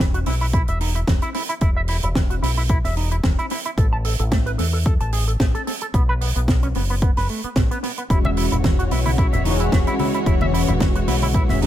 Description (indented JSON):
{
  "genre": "nu-disco, nu disco",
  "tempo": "111 BPM",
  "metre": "4/4",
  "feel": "swing 54% on 16ths",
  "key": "E major",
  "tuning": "A4 = 438 Hz",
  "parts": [
    { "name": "electric guitar with an envelope filter", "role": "riff", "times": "0.0-11.7 s", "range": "B2 to A5", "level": "-27 LUFS", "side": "right 2 dB", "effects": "analog chorus, analog delay" },
    { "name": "fingered electric bass with an envelope filter", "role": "bass", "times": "0.0-11.7 s", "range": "E1 to E2", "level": "-22 LUFS", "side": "equal", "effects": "none" },
    { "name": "tight funk drum kit", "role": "drums", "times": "0.0-11.7 s", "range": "hi-hat, snare drum", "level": "-27 LUFS", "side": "right 2 dB", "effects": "analog delay" },
    { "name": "electronic kick drum", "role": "drums", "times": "0.5-11.5 s", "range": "none", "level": "-19 LUFS", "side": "equal", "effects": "overdrive" },
    { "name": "mellow synth brass", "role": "accompaniment", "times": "8.1-11.7 s", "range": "E3 to F#4", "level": "-23 LUFS", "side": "left 1 dB", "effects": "chorus, sidechain pumping, analog delay" },
    { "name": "rich studio string section", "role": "sustained chords", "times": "8.1-11.7 s", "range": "E3 to C#5", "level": "-30 LUFS", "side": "left 3 dB", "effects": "sidechain pumping" },
    { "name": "congas", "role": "percussion", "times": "8.2-11.7 s", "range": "none", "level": "-28 LUFS", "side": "left 3 dB", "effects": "analog delay" }
  ],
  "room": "small room ambience",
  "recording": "echo-heavy mix",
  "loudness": "-18 LUFS",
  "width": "side -12 dB against mid",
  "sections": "0.0-11.7 A section",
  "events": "none",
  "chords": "0.0 E5; 3.8 A5; 5.9 B5; 8.1 E69",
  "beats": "0.54 1.08 | 1.62 2.16 2.70 3.24 | 3.78 4.32 4.86 5.40 | 5.94 6.48 7.02 7.56 | 8.10 8.64 9.18 9.72 | 10.27 10.80 11.35"
}